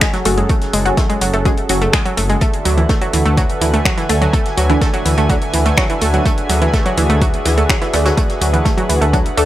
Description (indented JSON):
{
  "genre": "melodic techno",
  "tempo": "125 BPM",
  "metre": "4/4",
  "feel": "straight",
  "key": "unclear",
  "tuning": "A4 = 440 Hz",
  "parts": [
    { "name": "warm analog pad", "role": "sustained chords", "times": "0.0-9.5 s", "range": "D3 to F#5", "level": "-22 LUFS", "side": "equal", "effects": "chorus, sidechain pumping" },
    { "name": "analog pluck", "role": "arpeggios", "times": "0.0-9.4 s", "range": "E3 to A3", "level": "-19 LUFS", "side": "right 2 dB", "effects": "chorus, sidechain pumping, tape echo" },
    { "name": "electronic kick drum", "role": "drums", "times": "0.0-9.2 s", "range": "none", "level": "-17 LUFS", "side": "equal", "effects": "overdrive, studio reverb" },
    { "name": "techno drum kit", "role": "drums", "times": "0.0-9.5 s", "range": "finger snaps, hi-hat", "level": "-22 LUFS", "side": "left 1 dB", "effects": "overdrive, studio reverb" },
    { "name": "warm soul drum kit", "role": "drums", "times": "0.0-9.5 s", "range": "hi-hat, snare drum", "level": "-29 LUFS", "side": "left 1 dB", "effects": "high-pass filter on hats, studio reverb, high-pass filter on snare, high-pass filter on room" },
    { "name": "filtered dub chord stab", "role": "stabs", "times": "0.3-9.5 s", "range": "D3 to F#4", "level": "-22 LUFS", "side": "left 1 dB", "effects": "phaser, analog chorus, sidechain pumping, tape echo" },
    { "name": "dark detuned saw bass", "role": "bass", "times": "0.3-9.5 s", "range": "F#1 to D2", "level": "-17 LUFS", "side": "equal", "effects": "sidechain pumping" },
    { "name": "airy breathy pad", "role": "texture", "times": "2.4-9.5 s", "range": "B4 to G#5", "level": "-25 LUFS", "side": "equal", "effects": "chorus, sidechain pumping" }
  ],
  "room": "little or no reverb",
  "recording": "none",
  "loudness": "-13 LUFS",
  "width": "side -14 dB against mid",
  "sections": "0.0-9.5 A section",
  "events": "none",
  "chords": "0.0 F#madd9; 2.4 Dadd9"
}